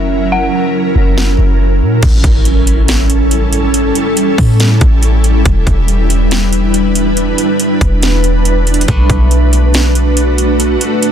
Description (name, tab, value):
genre	hip hop, atmospheric cloud-rap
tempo	140 BPM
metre	4/4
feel	half-time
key	unclear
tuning	A4 = 440 Hz
part	dark detuned synth bell	melody	0.0-0.7 s	E5 to F#5	-20 LUFS	left 3 dB	chorus, low-pass filter, ping-pong delay
part	ethereal airy pad	sustained chords	0.0-11.1 s	F#3 to B4	-13 LUFS	right 1 dB	ensemble chorus, built-in reverb, tremolo, sidechain pumping, low-pass filter
part	warm 808-style bass	bass	0.0-10.8 s	E1 to A#2	-11 LUFS	equal	none
part	qanun	texture	0.0-2.0, 8.9-11.1 s	F#3 to B4	-28 LUFS	left 2 dB	none
part	trap drum kit	drums	1.2-11.1 s	crash cymbal, hi-hat, kick drum, snare drum	-15 LUFS	equal	overdrive
part	impact	sound effects	2.1-3.7 s	none	-21 LUFS	equal	none
room	little or no reverb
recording	dense, heavily limited modern master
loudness	-9 LUFS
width	side -9 dB against mid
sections	0.0-2.0 A section; 2.0-11.1 B section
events	filter sweep 0.0-2.0; impact 2.0-3.7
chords	0.0 F#7; 2.0 A7; 5.5 Em7; 8.9 Bm7